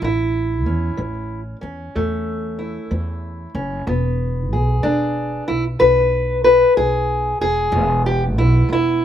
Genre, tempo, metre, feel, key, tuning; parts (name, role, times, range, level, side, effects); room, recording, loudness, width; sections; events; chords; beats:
acoustic country blues, solo or duo; 62 BPM (dotted quarters); 12/8; straight; E major; A4 = 441 Hz
fingerpicked steel-string acoustic guitar; melody; 0.0-9.0 s; E2 to B4; -18 LUFS; left 1 dB; slapback echo
upright bass; bass; 0.0-9.0 s; E1 to E2; -21 LUFS; right 1 dB
little or no reverb; recorded outdoors, with no room sound; -16 LUFS; side -10 dB against mid
0.0-9.0 A section
0.0 A; 3.9 E
| 0.03 0.99 1.95 2.91 | 3.88 4.84 5.80 6.76 | 7.73 8.69